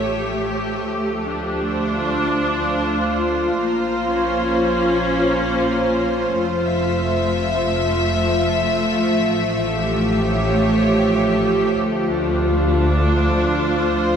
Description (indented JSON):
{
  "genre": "ambient",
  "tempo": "66 BPM",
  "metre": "3/4",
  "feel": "straight",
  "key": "unclear",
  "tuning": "A4 = 439 Hz",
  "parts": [
    { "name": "clear symphonic string section", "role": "sustained chords", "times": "0.0-14.2 s", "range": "A3 to E5", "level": "-18 LUFS", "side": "equal", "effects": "none" },
    { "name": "clear chamber double bass section", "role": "bass", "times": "0.0-14.2 s", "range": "F1 to D2", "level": "-25 LUFS", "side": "equal", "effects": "none" },
    { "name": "bowed-like drone", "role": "drone", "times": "0.0-14.2 s", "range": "F3 to F4", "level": "-25 LUFS", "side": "left 1 dB", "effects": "built-in reverb" }
  ],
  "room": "wet lush hall reverb, RT60 2.7 s",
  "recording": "none",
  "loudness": "-17 LUFS",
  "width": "side -7 dB against mid",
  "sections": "0.0-14.2 A section",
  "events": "fade-in on double bass section 0.0-14.2; fade-in on synth drone 0.0-14.2",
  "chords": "0.0 A7; 0.9 Dm7; 3.6 Bbmadd9; 6.3 Fmaj7; 9.1 A7; 11.8 Dm7",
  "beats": "| 0.89 1.80 2.71 | 3.62 4.52 5.43 | 6.34 7.25 8.16 | 9.07 9.98 10.89 | 11.80 12.71 13.62"
}